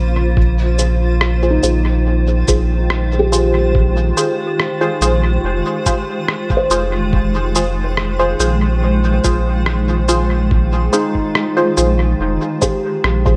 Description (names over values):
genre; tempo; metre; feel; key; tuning
ambient dub; 71 BPM; 4/4; straight; unclear; A4 = 440 Hz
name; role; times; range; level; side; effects
granular cloud pad; sustained chords; 0.0-13.4 s; Db3 to C5; -23 LUFS; equal; built-in reverb
warm sub bass; bass; 0.0-13.4 s; F1 to Bb1; -18 LUFS; equal; none
electronic kick drum; drums; 0.4-13.4 s; none; -20 LUFS; equal; small room ambience
filtered dub chord stab; stabs; 0.8-13.4 s; F4 to C5; -23 LUFS; equal; phaser, subtle chorus, dub echo
electronic shaker and rim click; drums; 0.8-13.2 s; none; -24 LUFS; equal; small room ambience, dub echo
felt-muted upright piano; arpeggios; 1.5-13.4 s; Eb4 to C5; -25 LUFS; equal; dub echo
room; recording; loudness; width
light reverb; none; -16 LUFS; mono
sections
0.0-13.4 A section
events
none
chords
0.4 Ab6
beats
| 0.37 1.21 2.06 2.90 | 3.75 4.59 5.44 6.28 | 7.13 7.97 8.82 9.66 | 10.51 11.35 12.20 13.04